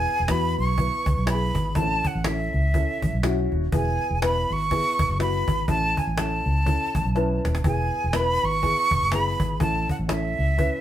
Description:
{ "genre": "uptempo 1960s-style soul", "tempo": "122 BPM", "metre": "4/4", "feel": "swing 60% on 8ths", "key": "E major", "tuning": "A4 = 440 Hz", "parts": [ { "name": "breathy bright jazz flute", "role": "melody", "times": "0.0-10.8 s", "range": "E5 to C#6", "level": "-25 LUFS", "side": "right 2 dB", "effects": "none" }, { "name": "dark upright piano", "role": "accompaniment", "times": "0.0-10.8 s", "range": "B3 to A5", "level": "-29 LUFS", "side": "left 2 dB", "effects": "none" }, { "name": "vintage muted fingered electric bass", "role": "bass", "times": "0.0-10.7 s", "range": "D#1 to E2", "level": "-25 LUFS", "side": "equal", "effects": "none" }, { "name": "cajon", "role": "drums", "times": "0.1-10.7 s", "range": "none", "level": "-28 LUFS", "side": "equal", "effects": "none" } ], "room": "moderate studio reverb, RT60 0.6 s", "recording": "band playing live in one room", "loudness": "-21 LUFS", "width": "side -12 dB against mid", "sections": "0.0-10.8 A section", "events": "upright piano fill 6.9-7.6, 10.6; drum fill 7.2-7.6", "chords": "0.0 E; 1.8 A; 3.7 E; 5.7 A; 7.6 E; 9.6 A" }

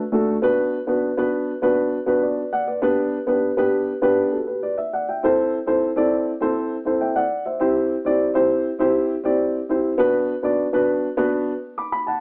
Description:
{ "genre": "soul", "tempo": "100 BPM", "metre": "4/4", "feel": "straight", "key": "unclear", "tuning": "A4 = 440 Hz", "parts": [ { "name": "dark upright piano", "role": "solo", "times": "0.1-12.2 s", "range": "A3 to D6", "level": "-21 LUFS", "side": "equal", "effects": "none" } ], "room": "moderate studio reverb, RT60 0.9 s", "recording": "AM radio sound", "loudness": "-21 LUFS", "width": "mono", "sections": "0.0-12.2 A section", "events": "none", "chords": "0.4 Bm; 2.8 G; 5.2 Am; 7.6 C; 10.0 Bm" }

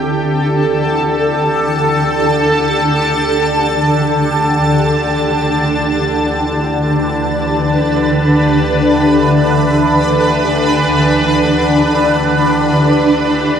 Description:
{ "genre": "ambient", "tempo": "free time", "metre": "none", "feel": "none", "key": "unclear", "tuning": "A4 = 443 Hz", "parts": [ { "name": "shimmering ambient pad", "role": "sustained chords", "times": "0.0-13.6 s", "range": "D3 to A5", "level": "-11 LUFS", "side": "equal", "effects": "chorus, built-in reverb, phaser" }, { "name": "warm studio double bass section", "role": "bass", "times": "0.0-13.6 s", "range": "D2", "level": "-25 LUFS", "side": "equal", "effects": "none" }, { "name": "overtone-sweeping drone", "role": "drone", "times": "0.9-13.6 s", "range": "E3", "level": "-26 LUFS", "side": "right 1 dB", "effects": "none" } ], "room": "wet huge ambient reverb, RT60 7.8 s", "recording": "none", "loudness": "-11 LUFS", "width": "side -8 dB against mid", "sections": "0.0-13.6 A section", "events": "fade-in on double bass section 0.0-13.6", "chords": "0.0 Dsus4" }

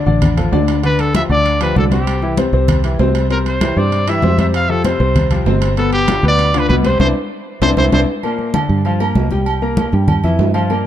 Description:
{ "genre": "latin, salsa", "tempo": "195 BPM", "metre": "4/4", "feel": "straight", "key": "unclear", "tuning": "A4 = 440 Hz", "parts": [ { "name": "clear grand piano", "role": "accompaniment", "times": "0.0-10.9 s", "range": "Bb2 to Bb5", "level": "-18 LUFS", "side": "left 4 dB", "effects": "none" }, { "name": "fingered electric bass", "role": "bass", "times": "0.1-10.9 s", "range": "G1 to G2", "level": "-16 LUFS", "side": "right 1 dB", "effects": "none" }, { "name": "congas", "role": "percussion", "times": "0.1-10.9 s", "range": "none", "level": "-19 LUFS", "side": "left 1 dB", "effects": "none" }, { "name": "timbales and agogo bells", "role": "percussion", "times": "0.2-10.9 s", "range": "none", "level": "-23 LUFS", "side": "right 5 dB", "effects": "none" }, { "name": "bright trumpet", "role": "melody", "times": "0.9-8.0 s", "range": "G4 to F5", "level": "-19 LUFS", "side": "equal", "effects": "none" } ], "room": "light reverb", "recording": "dark, warm production", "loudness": "-12 LUFS", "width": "side -11 dB against mid", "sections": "0.0-8.2 A section; 8.2-10.9 B section", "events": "band accent 7.0-8.2; drum fill 7.8-8.2", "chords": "0.0 Dm; 0.8 G5/D; 2.1 C; 4.5 Fsus2; 5.8 G7; 7.0 Cadd9; 8.2 Gm7; 9.5 C7" }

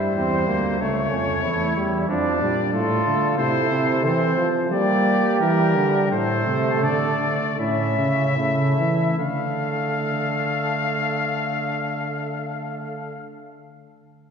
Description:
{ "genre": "classical, imitative canzona for brass ensemble", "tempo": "72-93 BPM", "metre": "4/4", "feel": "straight", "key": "D minor", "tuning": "A4 = 440 Hz", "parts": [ { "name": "clear trumpet", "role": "melody", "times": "0.0-13.3 s", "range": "A4 to F5", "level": "-26 LUFS", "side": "left 6 dB", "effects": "none" }, { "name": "mellow flugelhorn", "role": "second line", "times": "0.0-13.3 s", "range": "A3 to A4", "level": "-26 LUFS", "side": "right 2 dB", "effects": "none" }, { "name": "clear trombone", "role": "accompaniment", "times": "0.0-13.3 s", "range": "F3 to E4", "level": "-26 LUFS", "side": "right 3 dB", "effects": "none" }, { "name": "mellow bass trombone", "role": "bass", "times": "0.0-13.3 s", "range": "C#2 to G3", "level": "-24 LUFS", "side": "equal", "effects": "none" } ], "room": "wet church reverb, RT60 2.7 s", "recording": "heard from further back in the room", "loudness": "-19 LUFS", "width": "side -6 dB against mid", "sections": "0.0-9.2 A section; 9.2-12.5 B section", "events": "slowing down 2.1-9.2", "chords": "0.0 Edim; 0.8 A/C#; 2.1 Dm/F; 3.4 Am/C; 4.7 Gm; 6.1 Asus4; 7.6 A; 9.2 Dm" }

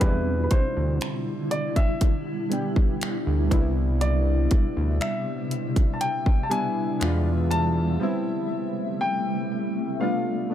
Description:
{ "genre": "contemporary R&B", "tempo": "60 BPM", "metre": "4/4", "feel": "straight", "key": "unclear", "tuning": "A4 = 444 Hz", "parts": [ { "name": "warm grand piano", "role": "melody", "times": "0.0-10.5 s", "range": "B4 to A5", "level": "-30 LUFS", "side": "left 1 dB", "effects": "none" }, { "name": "warm analog keys", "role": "accompaniment", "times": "0.0-10.5 s", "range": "B2 to G4", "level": "-29 LUFS", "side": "left 1 dB", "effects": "chorus" }, { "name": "granular cloud pad", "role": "sustained chords", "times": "0.1-10.5 s", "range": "B2 to E5", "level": "-30 LUFS", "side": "right 1 dB", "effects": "built-in reverb" }, { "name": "fat analog bass", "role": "bass", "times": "0.0-8.0 s", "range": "C2 to E2", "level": "-23 LUFS", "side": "equal", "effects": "none" }, { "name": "trap drum kit", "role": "drums", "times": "0.0-7.7 s", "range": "finger snaps, hi-hat, kick drum", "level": "-23 LUFS", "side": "equal", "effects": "none" } ], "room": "digital ambience", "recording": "none", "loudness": "-22 LUFS", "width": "side -11 dB against mid", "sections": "0.0-10.5 A section", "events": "break 8.0-10.5", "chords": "0.0 Em7; 3.5 Cmaj7; 7.0 E7b9; 8.0 Am7; 10.0 G7" }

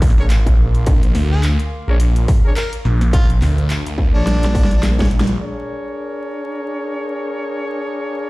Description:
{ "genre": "glitch hop", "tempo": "106 BPM", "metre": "4/4", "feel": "swing 57% on 16ths", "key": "unclear", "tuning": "A4 = 440 Hz", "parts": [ { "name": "phased detuned saw bass", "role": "bass", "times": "0.0-5.4 s", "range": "Bb1 to D2", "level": "-15 LUFS", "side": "equal", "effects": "phaser" }, { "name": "dubstep drum kit", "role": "drums", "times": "0.0-5.4 s", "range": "handclaps, hi-hat, snare drum", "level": "-23 LUFS", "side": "equal", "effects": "none" }, { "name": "electronic kick drum", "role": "drums", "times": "0.0-5.1 s", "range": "none", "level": "-15 LUFS", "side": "equal", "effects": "distortion" }, { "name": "warbly tape-like pad", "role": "texture", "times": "0.0-8.3 s", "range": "Bb4 to D6", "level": "-35 LUFS", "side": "right 1 dB", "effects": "chorus, built-in reverb, sidechain pumping" }, { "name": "clear horn section", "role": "stabs", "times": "0.2-8.3 s", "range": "D4 to C#5", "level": "-24 LUFS", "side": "left 1 dB", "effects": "sidechain pumping, dub echo" }, { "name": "warm harmonica", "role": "melody", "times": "1.3-4.9 s", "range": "D4 to Bb4", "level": "-29 LUFS", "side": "left 1 dB", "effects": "vintage 12-bit sampler grit, dub echo" } ], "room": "little or no reverb", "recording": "played on a big sound system in a bare room, stone room reverb, vinyl crackle", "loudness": "-14 LUFS", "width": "side -21 dB against mid", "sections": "0.0-5.4 A section; 5.4-8.3 B section", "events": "drum fill 4.3-5.4; band accent 5.2", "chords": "0.0 Bb; 5.4 Bb7#9" }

